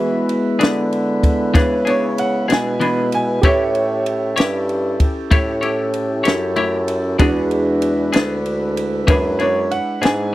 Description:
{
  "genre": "slow blues",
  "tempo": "64 BPM (dotted quarters)",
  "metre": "12/8",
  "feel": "straight",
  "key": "E mixolydian",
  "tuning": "A4 = 440 Hz",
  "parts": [
    { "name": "clear concert grand piano", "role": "accompaniment", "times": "0.0-10.3 s", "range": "D4 to E5", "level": "-24 LUFS", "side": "right 2 dB", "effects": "none" },
    { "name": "tonewheel organ", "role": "sustained chords", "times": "0.0-10.3 s", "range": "G#3 to B4", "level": "-22 LUFS", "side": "equal", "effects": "slow rotary speaker" },
    { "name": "mellow bassoon", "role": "bass", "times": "0.0-10.3 s", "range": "D2 to E3", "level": "-21 LUFS", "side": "equal", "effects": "none" },
    { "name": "compact cocktail drum kit", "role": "drums", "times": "0.3-10.2 s", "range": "kick drum, ride cymbal, snare drum", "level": "-16 LUFS", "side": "equal", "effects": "none" },
    { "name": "clean electric guitar", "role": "accompaniment", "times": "0.6-10.2 s", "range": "E3 to C#5", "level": "-21 LUFS", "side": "left 4 dB", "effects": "tremolo" },
    { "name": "bright upright piano", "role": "second line", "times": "1.6-10.3 s", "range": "B4 to B5", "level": "-22 LUFS", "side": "right 2 dB", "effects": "none" }
  ],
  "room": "small room ambience",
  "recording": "dry, close 1970s-style studio recording",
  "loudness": "-15 LUFS",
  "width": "side -16 dB against mid",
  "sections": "0.0-10.3 A section",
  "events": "upright piano solo 0.0-10.3",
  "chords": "0.0 E7; 3.4 A7; 7.2 E7"
}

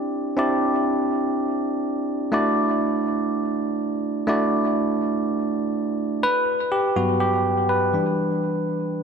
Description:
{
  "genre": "pop",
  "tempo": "123 BPM",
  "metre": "4/4",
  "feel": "straight",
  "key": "G major",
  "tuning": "A4 = 440 Hz",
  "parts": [
    { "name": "bell-like tine electric piano", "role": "solo", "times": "0.0-9.0 s", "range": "G2 to D5", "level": "-20 LUFS", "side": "right 1 dB", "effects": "ping-pong delay" }
  ],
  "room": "wet plate reverb, RT60 3.3 s",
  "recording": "dreamy mix soaked in reverb",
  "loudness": "-20 LUFS",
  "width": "side -6 dB against mid",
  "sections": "0.0-6.2 A section; 6.2-9.0 B section",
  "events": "tine electric piano solo 6.2-9.0",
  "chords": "0.0 Cadd9; 2.3 Dadd9; 6.2 Gmaj7; 7.9 Em7"
}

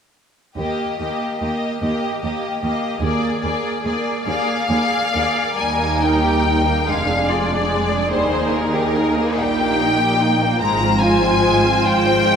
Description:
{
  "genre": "classical, slow romantic movement for string orchestra",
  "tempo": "48 BPM (dotted quarters)",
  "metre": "6/8",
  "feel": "uneven beats, rubato",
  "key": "Eb major",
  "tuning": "A4 = 440 Hz",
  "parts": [
    { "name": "clear symphonic violin section", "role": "melody", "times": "0.6-12.4 s", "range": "Bb4 to Bb5", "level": "-21 LUFS", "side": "left 3 dB", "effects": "none" },
    { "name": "warm symphonic violin section", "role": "second line", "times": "0.6-12.4 s", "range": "G3 to C5", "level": "-22 LUFS", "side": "left 1 dB", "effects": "none" },
    { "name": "warm symphonic viola section", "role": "accompaniment", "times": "0.6-12.4 s", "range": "F3 to F4", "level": "-22 LUFS", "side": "right 2 dB", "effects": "none" },
    { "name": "warm symphonic cello section", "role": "bass", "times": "0.6-12.4 s", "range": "Eb2 to Bb2", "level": "-25 LUFS", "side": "right 2 dB", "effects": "none" },
    { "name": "warm symphonic double bass section", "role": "bass", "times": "0.6-12.4 s", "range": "F1 to Eb2", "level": "-26 LUFS", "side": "right 3 dB", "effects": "none" }
  ],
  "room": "wet scoring stage reverb, RT60 2.1 s",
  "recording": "none",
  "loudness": "-16 LUFS",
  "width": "side -7 dB against mid",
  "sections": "0.6-5.6 A section; 5.6-12.4 B section",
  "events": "none",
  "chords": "0.6 Eb; 6.9 Ddim/F; 8.1 Eb; 10.6 Fm/Ab"
}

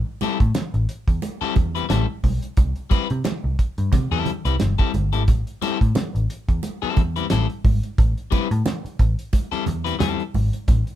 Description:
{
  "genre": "funk",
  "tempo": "89 BPM",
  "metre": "4/4",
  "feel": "swing 56% on 16ths",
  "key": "A minor",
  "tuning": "A4 = 440 Hz",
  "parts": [
    { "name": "electric guitar at the edge of break-up", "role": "accompaniment", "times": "0.2-10.2 s", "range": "G3 to B4", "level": "-24 LUFS", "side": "left 9 dB", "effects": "none" },
    { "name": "vintage muted picked electric bass", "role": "bass", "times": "0.2-10.8 s", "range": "G1 to C3", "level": "-23 LUFS", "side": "equal", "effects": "none" },
    { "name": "cloth-damped thuddy drum kit", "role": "drums", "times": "0.2-11.0 s", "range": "hi-hat, kick drum, snare drum", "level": "-20 LUFS", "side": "right 1 dB", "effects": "none" },
    { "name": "congas", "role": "percussion", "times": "0.2-10.9 s", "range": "none", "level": "-30 LUFS", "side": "right 4 dB", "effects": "none" }
  ],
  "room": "moderate small room reverb, RT60 0.5 s",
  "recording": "band playing live in one room",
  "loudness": "-19 LUFS",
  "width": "side -12 dB against mid",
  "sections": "0.0-11.0 A section",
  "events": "none",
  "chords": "0.0 Am7; 2.6 C6; 5.3 Am7"
}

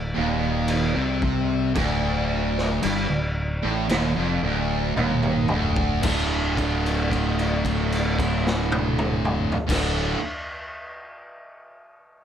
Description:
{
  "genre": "stoner and doom metal",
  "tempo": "56 BPM",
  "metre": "4/4",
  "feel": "straight",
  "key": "unclear",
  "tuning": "A4 = 440 Hz",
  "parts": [
    { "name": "fuzz guitar", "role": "riff", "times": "0.0-10.2 s", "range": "D2 to D3", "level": "-24 LUFS", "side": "right 1 dB", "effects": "distortion" },
    { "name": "growling fingered electric bass", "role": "bass", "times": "0.0-10.1 s", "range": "D1 to C2", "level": "-27 LUFS", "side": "equal", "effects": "overdrive" },
    { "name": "raw garage drum kit", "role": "drums", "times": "0.7-9.9 s", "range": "crash cymbal, kick drum, snare drum, toms", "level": "-27 LUFS", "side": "equal", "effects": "none" }
  ],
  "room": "little or no reverb",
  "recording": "none",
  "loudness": "-21 LUFS",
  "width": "side -9 dB against mid",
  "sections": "0.0-6.0 A section; 6.0-10.3 B section",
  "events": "drum fill 5.0-6.0; held note 6.0-9.7",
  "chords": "0.0 N.C.; 6.0 D5"
}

